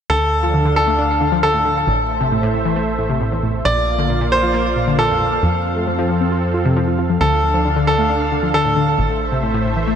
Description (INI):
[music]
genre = trance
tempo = 135 BPM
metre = 4/4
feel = straight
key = D minor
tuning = A4 = 440 Hz
[part]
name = bright baby grand piano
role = second line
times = 0.1-9.1 s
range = A4 to D5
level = -19 LUFS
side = equal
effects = digital delay
[part]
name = supersaw pad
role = sustained chords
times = 0.1-10.0 s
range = D3 to F5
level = -22 LUFS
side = right 2 dB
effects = vintage 12-bit sampler grit, low-pass filter
[part]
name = analog pluck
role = arpeggios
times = 0.1-9.9 s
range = E2 to F4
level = -20 LUFS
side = left 2 dB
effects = chorus, digital delay
[part]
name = tight sequencer bass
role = bass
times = 0.1-10.0 s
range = A1 to F2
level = -23 LUFS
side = right 1 dB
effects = none
[sound]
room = moderate huge ambient reverb, RT60 6.7 s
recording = none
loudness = -15 LUFS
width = side -8 dB against mid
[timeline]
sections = 0.1-10.0 A section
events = filter sweep on synth pluck 0.1-10.0; filter sweep on supersaw synth 0.1-10.0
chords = 0.1 Dm; 1.9 Am; 3.7 Bb; 5.4 F; 7.2 Dm; 9.0 Am